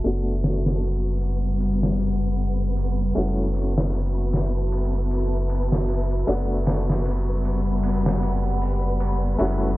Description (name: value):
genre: trip hop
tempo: 77 BPM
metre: 4/4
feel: swing 57% on 16ths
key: unclear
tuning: A4 = 439 Hz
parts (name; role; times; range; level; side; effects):
- warm upright piano; accompaniment; 0.0-9.8 s; A3 to F#4; -29 LUFS; left 1 dB; tremolo
- deep dark ambient pad; sustained chords; 0.0-9.8 s; G3 to B5; -29 LUFS; left 1 dB; chorus, built-in reverb
- soft dub sub bass; bass; 0.0-9.8 s; F#1; -24 LUFS; equal; none
- trip hop sampler-style drum kit; drums; 0.0-9.6 s; hi-hat, ride cymbal, snare drum; -28 LUFS; equal; low-pass filter on hats, low-pass filter on snare, low-pass filter on cymbals, low-pass filter on room
- flickering grainy texture; texture; 0.0-9.8 s; B3 to B4; -33 LUFS; equal; built-in reverb
room: digital ambience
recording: worn, warbling old tape, cassette tape, warbly pitch drift, low-pass filter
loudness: -21 LUFS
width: side -17 dB against mid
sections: 0.0-9.8 A section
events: filter sweep 0.0-9.8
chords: 0.0 Gmaj7/F#; 3.2 F#m7; 6.3 Gmaj7/F#